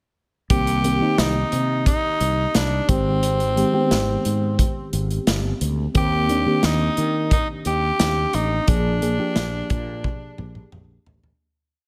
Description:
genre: 1980s-style pop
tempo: 88 BPM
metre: 4/4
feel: straight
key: unclear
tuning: A4 = 440 Hz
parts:
  - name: raspy tenor saxophone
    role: melody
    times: 0.5-10.7 s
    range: C4 to G4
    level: -26 LUFS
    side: equal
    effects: none
  - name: mellow FM electric piano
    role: accompaniment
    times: 0.5-11.4 s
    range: Eb3 to Ab4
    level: -27 LUFS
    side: equal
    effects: chorus, tremolo
  - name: fretless electric bass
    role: bass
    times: 0.5-11.3 s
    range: G1 to Eb3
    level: -26 LUFS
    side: equal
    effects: none
  - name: modern studio drum kit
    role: drums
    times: 0.5-11.4 s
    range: hi-hat, kick drum, snare drum, toms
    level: -24 LUFS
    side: equal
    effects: none
room: light reverb, studio ambience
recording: none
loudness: -21 LUFS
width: mono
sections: 0.5-11.4 verse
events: fade-out 8.7-11.4; drum fill 10.0-11.4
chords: 0.5 Cm7; 2.9 Abmaj7; 6.0 Eb6; 8.7 Bb7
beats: | 0.50 1.18 1.86 2.54 | 3.23 3.91 4.59 5.27 | 5.95 6.64 7.32 8.00 | 8.68 9.36 10.04 10.73

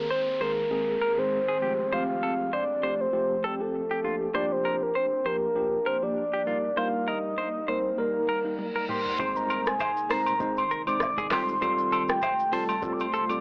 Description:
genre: afrobeats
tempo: 99 BPM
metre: 4/4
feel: swing 55% on 16ths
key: unclear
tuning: A4 = 442 Hz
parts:
  - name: soft octave-layered synth lead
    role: melody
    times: 0.0-13.4 s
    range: G4 to D6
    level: -30 LUFS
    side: equal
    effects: chorus
  - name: tine electric piano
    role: accompaniment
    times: 0.0-13.4 s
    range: Eb3 to C5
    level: -35 LUFS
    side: equal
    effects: none
  - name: ethereal airy pad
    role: sustained chords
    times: 0.0-13.4 s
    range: C3 to Bb4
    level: -40 LUFS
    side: equal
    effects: ensemble chorus, built-in reverb, sidechain pumping
  - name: downlifter, reverse cymbal and impact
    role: sound effects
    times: 0.0-11.6 s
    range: none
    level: -44 LUFS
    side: equal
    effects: none
  - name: direct-recorded clean electric guitar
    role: riff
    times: 0.1-13.2 s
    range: F4 to C5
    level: -35 LUFS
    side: equal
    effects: subtle chorus
  - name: booming analog drum machine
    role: drums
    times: 8.6-13.4 s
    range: handclaps, hi-hat, kick drum, rim click, shaker, toms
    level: -35 LUFS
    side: equal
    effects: none
  - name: deep log drum bass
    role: bass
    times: 9.2-13.2 s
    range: F1 to Ab1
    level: -46 LUFS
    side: equal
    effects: none
  - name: agogo bells and woodblock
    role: percussion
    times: 9.2-13.4 s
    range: none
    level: -35 LUFS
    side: equal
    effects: none
room: light reverb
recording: dry, gritty hardware recording, AM radio sound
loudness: -27 LUFS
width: mono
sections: 0.0-9.2 A section; 9.2-13.4 B section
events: reverse cymbal 8.4-9.2; drum fill 8.6-9.2; impact 9.2-11.6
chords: 0.0 Ab; 1.6 Fadd9; 4.0 Bb6; 6.5 Eb; 9.2 Ab; 11.3 Fadd9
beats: 0.10 0.71 1.31 | 1.92 2.53 3.13 3.74 | 4.34 4.95 5.56 6.16 | 6.77 7.37 7.98 8.59 | 9.19 9.80 10.40 11.01 | 11.62 12.22 12.83

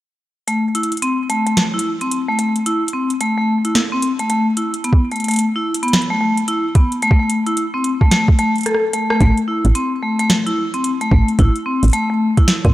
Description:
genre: IDM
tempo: 110 BPM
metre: 4/4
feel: swing 62% on 16ths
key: A minor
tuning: A4 = 439 Hz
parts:
  - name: vibraphone with hard mallets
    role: arpeggios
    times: 0.5-12.7 s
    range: A3 to A4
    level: -17 LUFS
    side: left 1 dB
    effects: low-pass filter, tape echo
  - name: electro analog drum machine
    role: drums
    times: 0.5-12.7 s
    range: hi-hat, rim click, snare drum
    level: -20 LUFS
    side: equal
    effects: none
  - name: electronic kick drum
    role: drums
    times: 4.9-12.7 s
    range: none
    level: -12 LUFS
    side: equal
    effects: overdrive
  - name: woody FM bass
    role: bass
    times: 9.2-12.7 s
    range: A1 to A2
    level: -14 LUFS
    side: equal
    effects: none
room: light reverb, digital ambience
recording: dry, gritty hardware recording, cassette tape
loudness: -14 LUFS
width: side -15 dB against mid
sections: 0.5-9.2 A section; 9.2-12.7 B section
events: drum fill 8.7-9.2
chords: 0.5 Am; 4.8 Asus2; 7.0 N.C.; 9.2 Am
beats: | 0.48 1.02 1.57 2.12 | 2.66 3.21 3.75 4.30 | 4.84 5.39 5.93 6.48 | 7.02 7.57 8.12 8.66 | 9.21 9.75 10.30 10.84 | 11.39 11.93 12.48

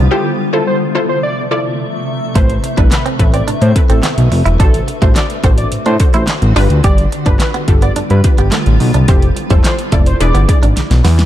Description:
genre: dance-pop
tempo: 107 BPM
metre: 4/4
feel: straight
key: A minor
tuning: A4 = 440 Hz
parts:
  - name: granular cloud pad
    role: sustained chords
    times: 0.0-11.3 s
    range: C3 to E5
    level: -21 LUFS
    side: left 1 dB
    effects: built-in reverb, sidechain pumping
  - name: direct-recorded clean electric guitar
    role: riff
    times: 0.0-11.2 s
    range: G3 to G4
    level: -22 LUFS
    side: right 6 dB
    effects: lush chorus
  - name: fat analog bass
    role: bass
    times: 0.0-11.3 s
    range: E1 to A2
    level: -12 LUFS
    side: equal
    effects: sidechain pumping
  - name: wide unison lead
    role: melody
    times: 0.1-10.6 s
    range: G4 to D5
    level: -21 LUFS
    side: equal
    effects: sidechain pumping, digital delay
  - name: wide unison pluck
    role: accompaniment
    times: 0.1-10.9 s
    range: C4 to D5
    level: -21 LUFS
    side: left 2 dB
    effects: sidechain pumping
  - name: pop drum kit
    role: drums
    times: 2.4-11.3 s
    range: handclaps, hi-hat, kick drum, snare drum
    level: -13 LUFS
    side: equal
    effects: none
room: digital ambience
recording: dark, warm production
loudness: -10 LUFS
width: side -12 dB against mid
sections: 0.0-11.3 A section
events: break 0.1-2.4; drum fill 10.8-11.3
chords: 0.1 Fmaj7; 2.4 Amadd9; 4.6 D7/A; 6.6 G7; 9.1 Fmaj7; 10.2 E7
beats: | 0.11 0.67 1.24 1.80 | 2.36 2.92 3.48 4.04 | 4.60 5.16 5.72 6.28 | 6.84 7.40 7.96 8.53 | 9.09 9.65 10.21 10.77

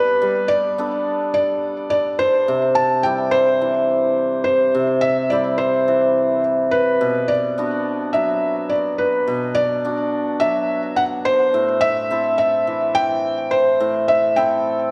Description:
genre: folktronica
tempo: 106 BPM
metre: 4/4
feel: straight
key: unclear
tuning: A4 = 439 Hz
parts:
  - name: felt-muted upright piano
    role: melody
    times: 0.0-14.9 s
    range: B4 to A5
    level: -21 LUFS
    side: equal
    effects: delay
  - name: hammered dulcimer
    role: arpeggios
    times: 0.0-14.9 s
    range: A2 to A4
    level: -23 LUFS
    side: equal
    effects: delay
room: wet recital hall reverb, RT60 1.4 s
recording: none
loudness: -19 LUFS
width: mono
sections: 0.0-14.9 A section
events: none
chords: 0.0 Gadd9; 2.5 C; 7.0 Bm; 11.5 Am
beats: | 0.22 0.79 1.35 1.92 | 2.48 3.05 3.62 4.18 | 4.75 5.31 5.88 6.45 | 7.01 7.58 8.14 8.71 | 9.28 9.84 10.41 10.97 | 11.54 12.11 12.67 13.24 | 13.80 14.37

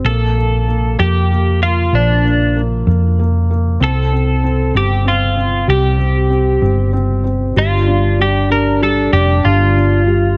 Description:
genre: six-eight pop ballad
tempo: 64 BPM (dotted quarters)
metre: 6/8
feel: straight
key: G minor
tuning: A4 = 436 Hz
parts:
  - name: felt-muted upright piano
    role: accompaniment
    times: 0.0-10.4 s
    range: D3 to D4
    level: -23 LUFS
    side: equal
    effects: none
  - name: hollow-body short-scale fingered electric bass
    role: bass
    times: 0.0-10.4 s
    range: F1 to F2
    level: -17 LUFS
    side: equal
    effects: none
  - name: twelve-string electric guitar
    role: melody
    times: 0.1-10.4 s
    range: D4 to Bb4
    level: -20 LUFS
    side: equal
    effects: none
  - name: mellow French horn section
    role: second line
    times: 7.5-10.4 s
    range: D4 to F4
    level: -22 LUFS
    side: equal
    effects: none
room: small room ambience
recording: none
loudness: -14 LUFS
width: mono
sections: 0.0-7.6 A section; 7.6-10.4 B section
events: none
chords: 0.0 Bbmaj7(no3); 3.8 C5; 7.6 G5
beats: | 0.05 0.99 | 1.93 2.87 | 3.81 4.75 | 5.68 6.62 | 7.56 8.50 | 9.44

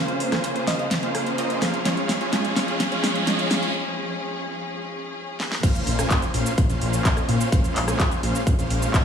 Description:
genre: EDM, festival progressive house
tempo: 127 BPM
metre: 4/4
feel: straight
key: Bb minor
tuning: A4 = 436 Hz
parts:
  - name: rich symphonic string section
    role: sustained chords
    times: 0.0-9.0 s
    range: Db3 to C5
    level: -30 LUFS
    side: left 1 dB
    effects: sidechain pumping
  - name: supersaw chords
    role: riff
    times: 0.0-9.0 s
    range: Ab3 to Ab5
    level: -27 LUFS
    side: right 1 dB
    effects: sidechain pumping, low-pass filter, digital delay
  - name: riser and impact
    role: sound effects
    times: 0.0-7.5 s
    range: none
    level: -32 LUFS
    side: right 1 dB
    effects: none
  - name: pop drum kit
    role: drums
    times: 0.1-9.0 s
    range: crash cymbal, handclaps, hi-hat, rim click, shaker, snare drum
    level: -26 LUFS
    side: equal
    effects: studio reverb
  - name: soft struck synth lead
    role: melody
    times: 0.7-0.9 s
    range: Eb5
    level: -36 LUFS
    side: equal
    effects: none
  - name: wide detuned saw bass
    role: bass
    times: 5.6-9.0 s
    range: Bb1 to Bb2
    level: -26 LUFS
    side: left 1 dB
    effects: chorus, sidechain pumping
  - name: electronic kick drum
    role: drums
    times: 5.6-9.0 s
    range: none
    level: -21 LUFS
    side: equal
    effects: overdrive, studio reverb
room: light reverb, digital ambience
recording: high-pass filter, studio reverb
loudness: -20 LUFS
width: side -7 dB against mid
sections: 0.0-5.6 A section; 5.6-9.0 B section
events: build-up 0.0-5.6; drum fill 0.0-3.7, 5.4; riser 0.0-3.7; break 3.7-5.6; drop 5.6-9.0; impact 5.6-7.5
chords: 0.0 Bbmadd9; 1.9 Db; 5.6 Bbmadd9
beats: 0.44 0.91 1.38 | 1.85 2.33 2.80 3.27 | 3.74 4.22 4.69 5.16 | 5.63 6.11 6.58 7.05 | 7.52 8.00 8.47 8.94

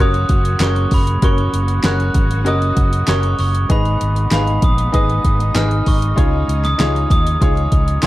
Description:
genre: piano-driven pop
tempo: 97 BPM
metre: 4/4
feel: straight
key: F# major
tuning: A4 = 440 Hz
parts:
  - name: glockenspiel with soft plastic mallets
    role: melody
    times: 0.0-8.1 s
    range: B5 to F#6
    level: -21 LUFS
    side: right 1 dB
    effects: none
  - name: bright upright piano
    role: accompaniment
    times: 0.0-8.1 s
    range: G#2 to E#5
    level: -22 LUFS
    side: left 1 dB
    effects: none
  - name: warm studio string section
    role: sustained chords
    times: 0.0-8.1 s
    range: C#3 to F#4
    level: -29 LUFS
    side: right 1 dB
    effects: none
  - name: fingered electric bass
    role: bass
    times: 0.0-8.1 s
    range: F#1 to D#2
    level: -18 LUFS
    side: equal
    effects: none
  - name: deep house drum kit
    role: drums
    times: 0.1-8.1 s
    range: hi-hat, kick drum, snare drum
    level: -17 LUFS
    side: equal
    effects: none
  - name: group handclap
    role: percussion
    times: 0.6-8.1 s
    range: none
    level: -30 LUFS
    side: right 3 dB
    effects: none
room: small room ambience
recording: dark, warm production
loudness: -13 LUFS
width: side -16 dB against mid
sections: 0.0-8.1 A section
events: none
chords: 0.0 F#; 3.7 G#m; 6.2 C#add9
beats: 0.61 | 1.23 1.85 2.46 3.08 | 3.70 4.32 4.94 5.56 | 6.17 6.79 7.41 8.03

